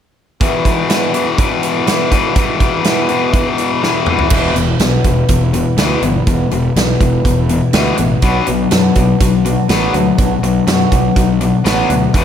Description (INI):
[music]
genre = classic rock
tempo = 123 BPM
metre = 4/4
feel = straight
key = E minor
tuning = A4 = 440 Hz
[part]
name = picked old ladder-braced acoustic guitar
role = accompaniment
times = 0.4-12.2 s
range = E2 to G4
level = -20 LUFS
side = right 4 dB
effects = none
[part]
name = overdriven electric guitar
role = riff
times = 0.4-12.2 s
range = E2 to B3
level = -15 LUFS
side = left 5 dB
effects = none
[part]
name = big rock drum kit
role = drums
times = 0.4-12.2 s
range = crash cymbal, hi-hat, kick drum, snare drum, toms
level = -16 LUFS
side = right 2 dB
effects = none
[part]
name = fuzz fingered electric bass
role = bass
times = 4.3-12.2 s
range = E1 to F#2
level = -18 LUFS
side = right 1 dB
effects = overdrive
[sound]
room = light reverb, studio ambience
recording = none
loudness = -11 LUFS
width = side -9 dB against mid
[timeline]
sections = 0.4-4.3 A section; 4.3-12.2 B section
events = drum fill 3.8-4.3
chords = 0.4 Em; 8.2 Bm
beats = | 0.41 0.90 1.39 1.88 | 2.37 2.85 3.34 3.83 | 4.32 4.81 5.29 5.78 | 6.27 6.76 7.25 7.74 | 8.23 8.72 9.21 9.70 | 10.19 10.68 11.16 11.65 | 12.14